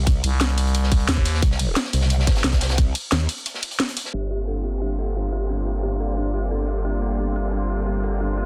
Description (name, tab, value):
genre	dark technical drum and bass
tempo	177 BPM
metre	4/4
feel	straight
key	G minor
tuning	A4 = 441 Hz
part	growl bass	bass	0.0-8.5 s	G1 to Eb2	-25 LUFS	equal	chorus, sidechain pumping
part	crunchy breakbeat drum kit	drums	0.1-4.1 s	hi-hat, snare drum	-34 LUFS	equal	high-pass filter on hats, high-pass filter on snare, high-pass filter on room
part	drum and bass drum kit	drums	0.1-8.1 s	crash cymbal, hi-hat, ride cymbal, snare drum	-27 LUFS	equal	none
part	electronic kick drum	drums	0.1-2.8 s	none	-21 LUFS	equal	none
part	growling FM bass	bass	0.2-1.4 s	C2 to Eb2	-22 LUFS	equal	tube saturation
part	deep dark ambient pad	sustained chords	5.3-8.5 s	G3 to A4	-35 LUFS	equal	chorus, built-in reverb, sidechain pumping
part	dark detuned synth bell	arpeggios	4.1-8.4 s	G4 to A4	-34 LUFS	equal	chorus, tremolo, sidechain pumping, low-pass filter, delay
part	downlifter	sound effects	4.2-6.8 s	none	-50 LUFS	equal	none
part	muted studio string section	texture	4.1-8.5 s	Bb3 to D5	-34 LUFS	equal	sidechain pumping
room	light reverb, studio reverb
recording	dense, heavily limited modern master, low-pass filter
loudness	-23 LUFS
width	mono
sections	0.0-4.1 A section; 4.1-8.5 B section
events	drop 0.0-4.1; break 3.5-4.1; filter sweep on synth bell 4.1-8.5; filter sweep 4.1-8.5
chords	0.0 N.C.; 4.1 Gm